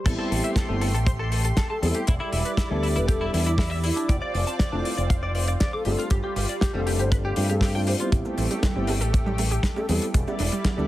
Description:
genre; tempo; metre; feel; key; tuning
nu-disco, nu disco; 119 BPM; 4/4; straight; A minor; A4 = 440 Hz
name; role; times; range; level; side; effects
lush unison pad; sustained chords; 0.0-10.9 s; G3 to C6; -32 LUFS; right 1 dB; chorus, sidechain pumping
dark grand piano; accompaniment; 0.1-10.9 s; G3 to A4; -30 LUFS; left 1 dB; none
direct-recorded clean electric guitar; riff; 0.1-8.1 s; E3 to D6; -32 LUFS; left 2 dB; ensemble chorus, low-pass filter
fingered electric bass with an envelope filter; bass; 0.1-10.9 s; E1 to G2; -26 LUFS; equal; sidechain pumping
damped 70s drum kit; drums; 0.1-10.8 s; crash cymbal, hi-hat, snare drum; -30 LUFS; left 2 dB; small room reverb
kick drum; drums; 0.1-10.8 s; none; -24 LUFS; equal; small room reverb
mellow hollow silver concert flute; melody; 1.7-10.1 s; E4 to C5; -32 LUFS; left 1 dB; tape echo
analog pluck; arpeggios; 8.1-10.9 s; G3 to A4; -34 LUFS; right 3 dB; chorus, sidechain pumping, tape echo
cabasa, bongos and congas; percussion; 8.1-10.9 s; none; -32 LUFS; right 4 dB; none
room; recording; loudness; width
studio reverb; heavily compressed radio sound; -22 LUFS; side -15 dB against mid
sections
0.1-10.9 A section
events
drop 0.1-10.9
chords
0.1 Am7; 2.1 Em7; 4.1 Dm7/F; 5.9 G7sus4; 8.1 Am7; 10.1 Em7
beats
| 0.06 0.56 1.07 1.57 | 2.08 2.58 3.08 3.59 | 4.09 4.60 5.10 5.60 | 6.11 6.61 7.12 7.62 | 8.12 8.63 9.13 9.64 | 10.14 10.65

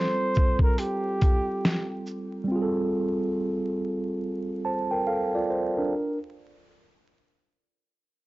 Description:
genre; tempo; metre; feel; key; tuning
lo-fi hip hop; 70 BPM; 4/4; swing 62% on 16ths; G minor; A4 = 440 Hz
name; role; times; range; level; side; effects
breathy flugelhorn; melody; 0.0-2.1 s; G4 to C5; -29 LUFS; right 1 dB; low-pass filter, plate reverb
mellow tine electric piano; accompaniment; 0.0-6.2 s; G3 to A5; -27 LUFS; right 1 dB; fast stereo tremolo, cassette tape, low-pass filter, plate reverb
boom bap sampler-style drum kit; drums; 0.3-2.3 s; hi-hat, kick drum, shaker, snare drum; -22 LUFS; equal; none
room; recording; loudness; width
moderate studio reverb, RT60 0.6 s; dark, warm production, vinyl crackle, nothing above 7.7 kHz; -24 LUFS; side -18 dB against mid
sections
0.0-5.9 A section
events
none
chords
0.0 Gsus2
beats
0.78 1.64 | 2.49 3.35 4.21 5.07

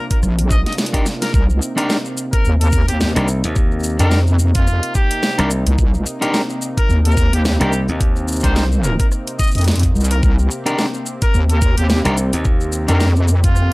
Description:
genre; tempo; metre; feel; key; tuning
glitch hop; 108 BPM; 4/4; swing 56% on 16ths; C minor; A4 = 440 Hz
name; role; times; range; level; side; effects
clear trumpet; melody; 0.0-13.7 s; F4 to Eb5; -25 LUFS; left 1 dB; analog delay
warm analog pad; sustained chords; 0.0-13.7 s; C3 to G4; -26 LUFS; equal; chorus, sidechain pumping
dubstep drum kit; drums; 0.1-13.7 s; hi-hat, rim click, shaker, snare drum; -23 LUFS; equal; none
electronic kick drum; drums; 0.1-13.5 s; none; -16 LUFS; equal; none
wobble bass; bass; 0.2-13.7 s; Bb1 to F2; -14 LUFS; equal; chorus
electric guitar at the edge of break-up; stabs; 0.9-13.1 s; D4 to Bb4; -21 LUFS; equal; vintage 12-bit sampler grit, sidechain pumping, analog delay
slap bass; bass; 3.2-8.4, 12.1-12.9 s; C2 to Eb2; -19 LUFS; equal; none
room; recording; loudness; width
little or no reverb; dry, gritty hardware recording; -14 LUFS; side -23 dB against mid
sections
0.0-13.7 A section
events
drum fill 1.1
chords
0.0 Cm9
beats
0.23 0.78 | 1.34 1.90 2.45 3.01 | 3.56 4.12 4.67 5.23 | 5.78 6.34 6.89 7.45 | 8.01 8.56 9.12 9.67 | 10.23 10.78 11.34 11.89 | 12.45 13.01 13.56

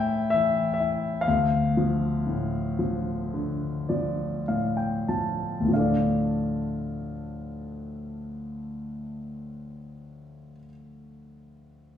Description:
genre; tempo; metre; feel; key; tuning
classical, lyrical solo piano; 46-67 BPM; 4/4; rubato; D minor; A4 = 441 Hz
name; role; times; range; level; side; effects
warm concert grand piano; solo; 0.0-12.0 s; D2 to A5; -25 LUFS; left 2 dB; none
room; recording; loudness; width
wet recital hall reverb, RT60 1.4 s; heard from further back in the room, small room ambience; -24 LUFS; side -9 dB against mid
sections
0.0-5.7 A section; 5.7-10.7 B section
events
slowing down 0.0-5.7; grand piano fill 3.3-5.7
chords
0.0 A5; 1.3 Dm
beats
0.33 | 1.26 2.26 3.33 4.47 | 5.71 6.96 8.18 9.41

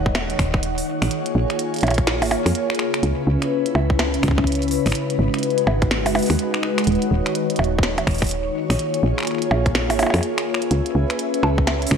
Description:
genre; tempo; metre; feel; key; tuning
IDM; 125 BPM; 4/4; swing 62% on 16ths; Eb minor; A4 = 442 Hz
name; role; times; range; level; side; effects
glassy FM pad; sustained chords; 0.0-12.0 s; Db3 to Gb5; -22 LUFS; left 1 dB; ensemble chorus, built-in reverb
woody FM bass; bass; 0.0-12.0 s; Eb1 to F2; -21 LUFS; equal; transformer saturation
electronic kick drum; drums; 0.1-12.0 s; none; -20 LUFS; equal; studio reverb
glitchy drum kit; drums; 0.1-12.0 s; finger snaps, hi-hat, percussion blips, snare drum; -24 LUFS; right 1 dB; studio reverb, tape echo
room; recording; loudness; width
light reverb, digital ambience; dry, gritty hardware recording; -18 LUFS; side -7 dB against mid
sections
0.0-12.0 A section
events
none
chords
0.0 Ebm7; 0.9 Bbm7; 2.8 Dbm7; 5.0 Abm7; 6.9 Ebm7; 8.6 Bbm7; 10.5 Dbm7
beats
0.15 0.63 | 1.11 1.59 2.07 2.55 | 3.03 3.51 3.99 4.47 | 4.95 5.43 5.91 6.39 | 6.87 7.35 7.83 8.31 | 8.79 9.27 9.75 10.23 | 10.71 11.19 11.67

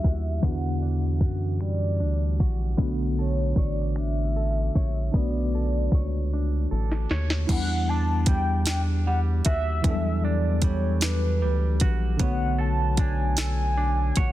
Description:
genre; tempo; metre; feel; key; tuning
slow six-eight R&B; 51 BPM (dotted quarters); 6/8; straight; E dorian; A4 = 439 Hz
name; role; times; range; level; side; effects
mellow horn-like synth lead; melody; 0.0-14.3 s; B4 to A5; -31 LUFS; equal; chorus
semi-hollow electric guitar; second line; 0.0-14.3 s; E3 to C#5; -34 LUFS; right 6 dB; none
tine electric piano; accompaniment; 0.0-14.3 s; D3 to C#5; -31 LUFS; left 1 dB; medium stereo tremolo
smooth R&B drum kit; drums; 0.0-14.3 s; crash cymbal, finger snaps, hi-hat, kick drum, snare drum; -24 LUFS; equal; soft clipping on snare
rubbery square bass; bass; 0.1-14.3 s; A1 to F#2; -25 LUFS; equal; none
room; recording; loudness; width
digital ambience; dense, heavily limited modern master, low-pass filter; -22 LUFS; side -14 dB against mid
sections
0.0-7.5 A section; 7.5-14.3 B section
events
filter sweep 0.0-7.5; drum fill 6.3-7.5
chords
0.0 Em9; 2.8 Bm9; 7.5 Em9; 12.2 Bm9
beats
| 0.43 1.61 | 2.78 3.96 | 5.14 6.31 | 7.49 8.67 | 9.84 11.02 | 12.20 13.37

